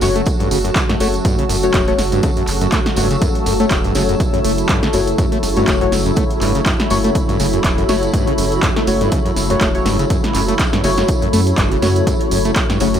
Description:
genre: acid house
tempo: 122 BPM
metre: 4/4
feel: swing 56% on 16ths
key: F# minor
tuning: A4 = 440 Hz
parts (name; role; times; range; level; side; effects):
- warm analog pad; sustained chords; 0.0-13.0 s; C#3 to F#4; -22 LUFS; equal; chorus, sidechain pumping
- overdriven acid bass; riff; 0.0-13.0 s; F#2 to A3; -22 LUFS; equal; distortion, wide subtle chorus, sidechain pumping, digital delay
- deep mellow chord stab; stabs; 0.0-13.0 s; A3 to C#5; -22 LUFS; left 4 dB; chorus, digital delay
- round analog bass; bass; 0.0-13.0 s; E1 to F#2; -22 LUFS; equal; tube saturation, sidechain pumping
- punchy analog drum machine; drums; 0.0-13.0 s; handclaps, hi-hat, snare drum; -22 LUFS; equal; none
- tambourine; percussion; 0.0-13.0 s; none; -29 LUFS; right 5 dB; none
- granular cloud pad; texture; 0.0-13.0 s; F#4 to B5; -23 LUFS; left 1 dB; built-in reverb, sidechain pumping
- electronic kick drum; drums; 0.3-12.7 s; none; -19 LUFS; equal; none
room: light reverb, digital ambience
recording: none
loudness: -13 LUFS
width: side -9 dB against mid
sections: 0.0-13.0 A section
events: none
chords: 0.0 F#m

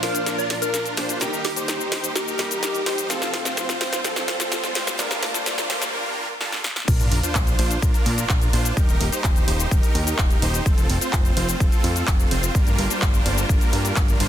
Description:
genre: EDM, festival progressive house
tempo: 127 BPM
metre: 4/4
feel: straight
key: Bb major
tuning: A4 = 439 Hz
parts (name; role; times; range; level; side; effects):
- plucky unison lead; melody; 0.0-3.0 s; G4 to D5; -28 LUFS; left 1 dB; ping-pong delay
- picked acoustic archtop guitar; accompaniment; 0.0-5.9 s; G2 to G4; -32 LUFS; right 1 dB; sidechain pumping, ping-pong delay
- bright symphonic string section; sustained chords; 0.0-14.3 s; Eb2 to A5; -34 LUFS; equal; sidechain pumping, low-pass filter
- supersaw chords; riff; 0.0-14.3 s; G3 to C5; -26 LUFS; right 1 dB; sidechain pumping, ping-pong delay
- big-room dance drum kit; drums; 0.0-14.3 s; cabasa, crash cymbal, handclaps, hi-hat, snare drum; -26 LUFS; left 1 dB; none
- riser and sub drop; sound effects; 2.0-8.8 s; none; -34 LUFS; equal; none
- fat analog bass; bass; 6.9-14.3 s; Eb1 to Bb2; -24 LUFS; equal; sidechain pumping
- electronic kick drum; drums; 6.9-14.1 s; none; -20 LUFS; equal; none
room: light reverb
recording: dense, heavily limited modern master, high-pass filter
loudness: -19 LUFS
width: side -11 dB against mid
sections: 0.0-6.9 A section; 6.9-14.3 B section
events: build-up 0.0-6.9; drum fill 0.0-5.9, 6.4-6.9; riser 2.0-5.9; break 5.9-6.9; drop 6.9-14.3; impact 6.9-8.8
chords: 0.0 Bb; 1.2 Eb; 3.1 F; 5.0 Gm7; 6.9 Bb; 8.8 Eb; 10.7 F; 12.5 Gm7

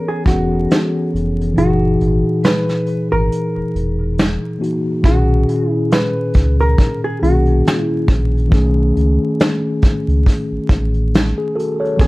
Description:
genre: lo-fi hip hop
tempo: 69 BPM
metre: 4/4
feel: swing 56% on 16ths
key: B major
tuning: A4 = 443 Hz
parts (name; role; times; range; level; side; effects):
- hollow-body jazz guitar; melody; 0.0-12.1 s; F#4 to B4; -21 LUFS; equal; none
- mellow tine electric piano; accompaniment; 0.0-12.1 s; A#2 to C#5; -18 LUFS; left 1 dB; medium stereo tremolo
- sub bass with octave; bass; 0.3-12.1 s; E1 to C#2; -16 LUFS; equal; none
- vintage brush drum kit; drums; 0.3-12.1 s; hi-hat, kick drum, snare drum; -15 LUFS; equal; none
room: light reverb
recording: dark, warm production, vinyl crackle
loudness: -14 LUFS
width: side -20 dB against mid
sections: 0.0-5.0 A section; 5.0-12.1 B section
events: kick muted 1.6-5.0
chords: 0.0 E6; 1.6 F#13; 5.0 Bmaj13; 8.5 B13

